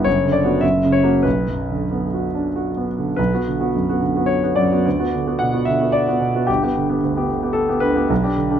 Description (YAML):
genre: classical, romantic character piece for solo piano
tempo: 90-114 BPM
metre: 3/4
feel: rubato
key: B minor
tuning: A4 = 435 Hz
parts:
  - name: clear concert grand piano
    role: solo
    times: 0.0-8.6 s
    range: F#1 to F#5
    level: -16 LUFS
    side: equal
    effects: none
room: light reverb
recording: close, detailed microphones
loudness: -17 LUFS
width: side -9 dB against mid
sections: 0.0-3.2 A section; 3.2-8.6 B section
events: none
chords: 0.1 Bm/F#; 0.6 F#7; 1.2 Bm; 4.9 Bm/D; 6.5 G